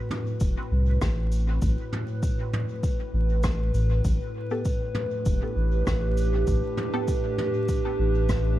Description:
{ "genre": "ambient dub", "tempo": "99 BPM", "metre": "4/4", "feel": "swing 53% on 16ths", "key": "A dorian", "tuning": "A4 = 440 Hz", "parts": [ { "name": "warbly tape-like pad", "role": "sustained chords", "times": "0.0-8.6 s", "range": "A2 to B4", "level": "-29 LUFS", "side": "right 1 dB", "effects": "chorus, built-in reverb, phaser" }, { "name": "vintage brush drum kit", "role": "drums", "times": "0.1-8.4 s", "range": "cabasa, rim click, toms", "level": "-34 LUFS", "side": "equal", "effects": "dub echo" }, { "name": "soft dub sub bass", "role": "bass", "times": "0.4-8.6 s", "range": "E1 to C2", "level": "-23 LUFS", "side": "equal", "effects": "none" }, { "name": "electronic kick drum", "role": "drums", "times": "0.4-8.4 s", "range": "none", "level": "-28 LUFS", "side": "equal", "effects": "none" }, { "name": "filtered dub chord stab", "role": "stabs", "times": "4.5-7.1 s", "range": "B3 to A4", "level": "-35 LUFS", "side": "equal", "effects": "phaser, dub echo" } ], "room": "studio ambience", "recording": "dark, warm production, vinyl crackle", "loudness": "-23 LUFS", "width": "side -14 dB against mid", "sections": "0.0-8.6 A section", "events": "none", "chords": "0.0 Am69; 4.0 Gadd9", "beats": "0.41 1.02 | 1.62 2.23 2.83 3.44 | 4.05 4.65 5.26 5.87 | 6.47 7.08 7.68 8.29" }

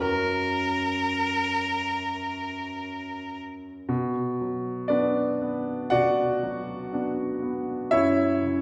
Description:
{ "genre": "classical, romantic duo for violin and grand piano", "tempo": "58-63 BPM", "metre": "4/4", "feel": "rubato", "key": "B minor", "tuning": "A4 = 440 Hz", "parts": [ { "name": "rich violin", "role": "melody", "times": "0.0-3.4 s", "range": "A#4", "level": "-30 LUFS", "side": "equal", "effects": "none" }, { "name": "warm grand piano", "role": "accompaniment", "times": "0.0-8.6 s", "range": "F#2 to F#5", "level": "-28 LUFS", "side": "equal", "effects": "none" } ], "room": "wet recital hall reverb, RT60 1.5 s", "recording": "recorded in a church or concert hall", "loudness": "-27 LUFS", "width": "mono", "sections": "0.0-3.9 A section; 3.9-8.6 B section", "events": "none", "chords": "0.0 F#; 3.9 Bm; 7.9 F#7(no3)", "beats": "| 0.03 0.99 1.95 2.90 | 3.89 4.91 5.93 6.93 | 7.92" }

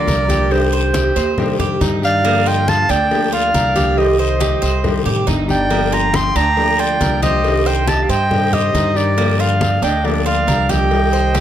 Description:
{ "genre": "latin, Cuban son and guajira", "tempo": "138 BPM", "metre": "4/4", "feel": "straight", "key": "G minor", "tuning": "A4 = 440 Hz", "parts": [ { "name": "bright clarinet", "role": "melody", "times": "0.0-11.4 s", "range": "C5 to C6", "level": "-18 LUFS", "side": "right 1 dB", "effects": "none" }, { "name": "bright reedy concert flute", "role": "second line", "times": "0.0-11.4 s", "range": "G4 to G5", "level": "-25 LUFS", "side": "right 4 dB", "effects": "none" }, { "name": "nylon-string guitar", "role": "accompaniment", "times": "0.0-11.4 s", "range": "C3 to G4", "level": "-23 LUFS", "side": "left 4 dB", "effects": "none" }, { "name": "Cuban tres", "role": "arpeggios", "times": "0.0-11.4 s", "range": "Bb3 to C5", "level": "-22 LUFS", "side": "right 4 dB", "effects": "analog delay" }, { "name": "upright bass", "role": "bass", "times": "0.0-11.4 s", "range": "G1 to G2", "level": "-19 LUFS", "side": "equal", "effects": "none" }, { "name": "congas", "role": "percussion", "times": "0.1-11.4 s", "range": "none", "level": "-24 LUFS", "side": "left 1 dB", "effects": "none" }, { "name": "cowbell", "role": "percussion", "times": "0.1-11.4 s", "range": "none", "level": "-26 LUFS", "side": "left 6 dB", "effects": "none" }, { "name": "guiro", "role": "percussion", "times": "0.1-11.4 s", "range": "none", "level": "-31 LUFS", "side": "left 5 dB", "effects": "none" } ], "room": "moderate large studio reverb, RT60 1.2 s", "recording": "dark, warm production", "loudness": "-13 LUFS", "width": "side -10 dB against mid", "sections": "0.0-11.4 A section", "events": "none", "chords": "0.0 Gm7; 0.5 Cmadd9; 2.2 Gm7; 4.0 Cmadd9; 5.7 Gm7; 7.4 Cmadd9; 9.2 Gm7", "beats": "0.08 | 0.51 0.94 1.38 1.81 | 2.24 2.68 3.11 3.54 | 3.98 4.41 4.84 5.28 | 5.71 6.15 6.58 7.01 | 7.45 7.88 8.31 8.75 | 9.18 9.61 10.05 10.48 | 10.91 11.35" }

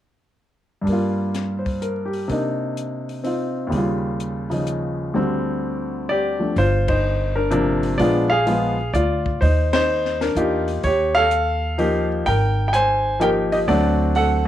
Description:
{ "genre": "jazz piano trio", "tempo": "127 BPM", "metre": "3/4", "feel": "swing 66% on 8ths", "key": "G minor", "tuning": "A4 = 439 Hz", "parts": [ { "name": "warm baby grand piano", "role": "melody", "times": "0.8-14.5 s", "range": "D2 to Ab5", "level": "-19 LUFS", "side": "equal", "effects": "none" }, { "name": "compact cocktail drum kit", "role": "drums", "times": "0.9-14.3 s", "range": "hi-hat, kick drum, ride cymbal, snare drum", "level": "-31 LUFS", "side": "left 3 dB", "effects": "none" }, { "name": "upright bass", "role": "bass", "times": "6.6-14.5 s", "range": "G1 to E2", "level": "-22 LUFS", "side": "right 1 dB", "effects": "none" } ], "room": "light reverb, small room ambience", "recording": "1960s-style stereo", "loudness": "-18 LUFS", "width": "side -12 dB against mid", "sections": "0.9-6.6 A section; 6.6-14.5 B section", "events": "band accent 6.8, 9.7", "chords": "0.9 Gm7; 2.3 Cm9; 3.7 Eb9; 5.1 D7sus4; 6.6 Gm7; 8.0 Bb7b9; 9.4 Ebmaj9; 10.8 Eb; 12.3 Abmaj9; 13.7 D7", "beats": "| 0.87 1.34 1.82 | 2.29 2.77 3.25 | 3.72 4.20 4.67 | 5.15 5.62 6.09 | 6.57 7.04 7.52 | 7.99 8.47 8.94 | 9.41 9.89 10.36 | 10.84 11.31 11.78 | 12.26 12.73 13.20 | 13.68 14.15" }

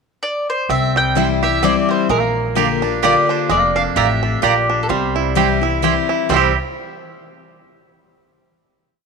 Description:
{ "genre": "bluegrass", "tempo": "128 BPM", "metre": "3/4", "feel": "swing 56% on 8ths", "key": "C mixolydian", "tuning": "A4 = 440 Hz", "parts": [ { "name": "mandolin", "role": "melody", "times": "0.2-6.5 s", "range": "A4 to G5", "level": "-20 LUFS", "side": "left 1 dB", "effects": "none" }, { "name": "picked steel-string acoustic guitar", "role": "accompaniment", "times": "0.7-6.5 s", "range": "F2 to F4", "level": "-20 LUFS", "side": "left 12 dB", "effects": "none" }, { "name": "bluegrass banjo", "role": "arpeggios", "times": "0.7-6.6 s", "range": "G3 to G4", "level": "-20 LUFS", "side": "right 12 dB", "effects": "none" }, { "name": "upright bass", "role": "bass", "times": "0.7-6.5 s", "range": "F1 to C2", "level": "-23 LUFS", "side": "equal", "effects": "none" }, { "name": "mandolin", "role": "stabs", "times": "1.2-6.5 s", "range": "Bb3 to Bb5", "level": "-23 LUFS", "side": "right 13 dB", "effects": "none" } ], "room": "moderate plate reverb, RT60 3.0 s", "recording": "1960s-style stereo with parts hard left and right", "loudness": "-14 LUFS", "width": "side -4 dB against mid", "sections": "0.0-0.7 pickup bar; 0.7-6.3 A section; 6.3-7.7 final chord", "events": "none", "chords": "0.0 N.C.; 0.7 C; 2.1 Bb; 4.9 C", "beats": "0.23 | 0.69 1.16 1.63 | 2.09 2.56 3.03 | 3.49 3.96 4.43 | 4.90 5.36 5.83 | 6.30" }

